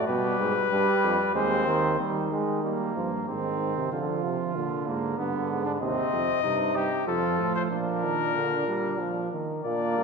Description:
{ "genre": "classical, imitative canzona for brass ensemble", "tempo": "94 BPM", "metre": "3/4", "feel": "straight", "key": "Bb major from 5.8 s", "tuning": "A4 = 439 Hz", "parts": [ { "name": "warm cornet", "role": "melody", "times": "0.0-2.0, 5.8-10.0 s", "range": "G4 to Eb5", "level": "-28 LUFS", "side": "left 7 dB", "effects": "none" }, { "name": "dark trumpet", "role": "second line", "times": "0.0-10.0 s", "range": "Bb3 to G4", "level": "-31 LUFS", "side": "right 4 dB", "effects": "none" }, { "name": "clear trombone", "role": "accompaniment", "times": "0.0-10.0 s", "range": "C3 to Bb3", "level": "-29 LUFS", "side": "right 3 dB", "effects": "none" }, { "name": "clear bass trombone", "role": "bass", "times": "0.0-10.0 s", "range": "Eb2 to Eb3", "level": "-31 LUFS", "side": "right 1 dB", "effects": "none" } ], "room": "wet concert hall reverb, RT60 1.7 s", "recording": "minimal, uncompressed stereo recording", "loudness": "-24 LUFS", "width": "side -4 dB against mid", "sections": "0.0-2.0 A section; 2.0-9.7 B section", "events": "none", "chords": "0.1 G; 1.4 Cm/Eb; 2.0 Eb; 3.3 Ab; 3.9 Ddim; 5.2 G; 5.8 Cm/Eb; 7.1 F; 7.7 Bb", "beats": "| 0.08 0.71 1.35 | 2.00 2.64 3.28 | 3.92 4.55 5.18 | 5.81 6.44 7.07 | 7.71 8.36 9.01 | 9.65" }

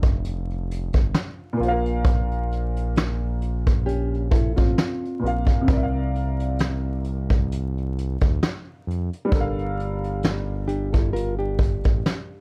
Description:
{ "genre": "lo-fi hip hop", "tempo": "66 BPM", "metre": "4/4", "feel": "swing 56% on 16ths", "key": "unclear", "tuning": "A4 = 444 Hz", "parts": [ { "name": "warm upright piano", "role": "accompaniment", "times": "0.0-12.4 s", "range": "Bb2 to Bb5", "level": "-31 LUFS", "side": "equal", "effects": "cassette tape" }, { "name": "smooth synth bass", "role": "bass", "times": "0.0-12.0 s", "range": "F1 to F2", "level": "-28 LUFS", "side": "equal", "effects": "none" }, { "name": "vintage brush drum kit", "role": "drums", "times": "0.0-12.3 s", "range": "hi-hat, kick drum, snare drum", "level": "-23 LUFS", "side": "equal", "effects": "none" }, { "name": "nylon-string guitar", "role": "second line", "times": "3.9-12.4 s", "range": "C4 to Bb4", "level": "-30 LUFS", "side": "equal", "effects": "plate reverb" } ], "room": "little or no reverb", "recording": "dark, warm production, vinyl crackle", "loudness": "-24 LUFS", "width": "mono", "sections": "0.0-12.4 A section", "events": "none", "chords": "0.0 F69; 1.6 Bb5; 5.7 C9sus4; 9.3 Gm9", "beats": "0.23 1.14 | 2.05 2.96 3.86 4.77 | 5.68 6.59 7.50 8.41 | 9.32 10.23 11.14 12.05" }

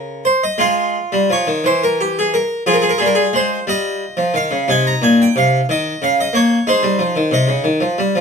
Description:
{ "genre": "classical, baroque-style suite movement for harpsichord", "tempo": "59 BPM (dotted quarters)", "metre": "6/8", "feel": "rubato", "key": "F minor", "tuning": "A4 = 440 Hz", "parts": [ { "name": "harpsichord", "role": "solo", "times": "0.0-8.2 s", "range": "Bb2 to Bb5", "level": "-14 LUFS", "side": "equal", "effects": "none" } ], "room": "light reverb", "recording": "minimal, uncompressed stereo recording", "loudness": "-14 LUFS", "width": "side -6 dB against mid", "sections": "0.6-8.2 A section", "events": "none", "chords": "0.0 Bbm; 0.6 Fm/Ab; 1.6 N.C.; 2.7 Fm; 4.7 Bb13sus4; 5.7 Eb5; 6.7 Ab (rootless)", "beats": "| 0.58 1.64 | 2.66 3.67 | 4.67 5.68 | 6.66 7.66" }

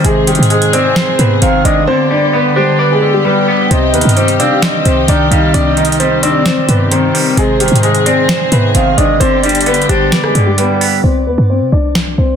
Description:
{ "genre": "hip hop, trap", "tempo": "131 BPM", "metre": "4/4", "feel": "half-time", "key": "C harmonic minor", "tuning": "A4 = 440 Hz", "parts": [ { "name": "dark baby grand piano", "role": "melody", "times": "0.0-12.4 s", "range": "G3 to Eb5", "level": "-15 LUFS", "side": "left 2 dB", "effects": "low-pass filter, digital delay" }, { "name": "breathy flute-like synth lead", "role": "second line", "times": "0.0-11.0 s", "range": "B4 to G5", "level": "-19 LUFS", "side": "right 4 dB", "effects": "chorus, digital delay" }, { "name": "semi-hollow electric guitar", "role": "accompaniment", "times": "0.0-11.0 s", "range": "C3 to D5", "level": "-15 LUFS", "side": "left 1 dB", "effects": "lush chorus, low-pass filter" }, { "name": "dark studio string section", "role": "sustained chords", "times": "0.0-11.0 s", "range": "D3 to Ab4", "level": "-18 LUFS", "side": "left 2 dB", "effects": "none" }, { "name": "short 808-style bass", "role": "bass", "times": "0.0-12.4 s", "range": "G1 to C3", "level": "-14 LUFS", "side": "equal", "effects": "none" }, { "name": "booming analog drum machine", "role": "drums", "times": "0.0-12.1 s", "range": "hi-hat, rim click, snare drum", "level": "-16 LUFS", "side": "right 1 dB", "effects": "none" } ], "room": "light reverb", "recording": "dense, heavily limited modern master", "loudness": "-9 LUFS", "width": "side -7 dB against mid", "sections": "0.0-11.0 A section; 11.0-12.4 B section", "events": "drums muted 1.9-3.7; hi-hats muted 11.0-12.4; filter sweep 11.0-12.4", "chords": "0.0 Ab; 1.9 G; 3.7 Cm; 7.4 Ab; 9.2 G; 11.0 C5", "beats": "| 0.04 0.50 0.96 1.42 | 1.88 2.33 2.79 3.25 | 3.71 4.17 4.62 5.08 | 5.54 6.00 6.46 6.92 | 7.37 7.83 8.29 8.75 | 9.21 9.66 10.12 10.58 | 11.04 11.49 11.95" }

